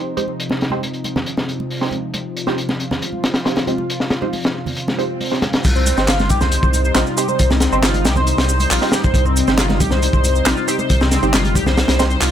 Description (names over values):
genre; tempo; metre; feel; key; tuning
breakbeat, breaks; 137 BPM; 4/4; straight; C minor; A4 = 441 Hz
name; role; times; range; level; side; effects
lush unison pad; sustained chords; 0.0-12.3 s; C3 to F4; -24 LUFS; left 1 dB; chorus, sidechain pumping
filtered dub chord stab; stabs; 0.2-12.1 s; C4 to C5; -24 LUFS; right 4 dB; phaser, lush chorus, ping-pong delay
crunchy breakbeat drum kit; drums; 0.2-12.3 s; crash cymbal, hi-hat, kick drum, snare drum; -19 LUFS; equal; low-pass filter on kick, low-pass filter on hats, low-pass filter on cymbals, low-pass filter on snare, low-pass filter on room
congas; percussion; 0.2-12.3 s; none; -28 LUFS; right 4 dB; none
swell; sound effects; 4.9-5.6 s; none; -30 LUFS; right 6 dB; none
saturated sub bass; bass; 5.6-12.3 s; G1 to C2; -18 LUFS; equal; none
electronic shaker and handclaps; drums; 5.6-12.3 s; none; -23 LUFS; right 1 dB; none
overdriven synth lead; riff; 5.8-12.3 s; C4 to C5; -21 LUFS; equal; analog chorus, ping-pong delay
room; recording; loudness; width
light reverb; none; -15 LUFS; side -10 dB against mid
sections
0.0-5.6 A section; 5.6-12.3 B section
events
filter sweep on analog synth pad 0.0-5.6; swell 4.9-5.6; drop 5.6-12.3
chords
0.0 Cm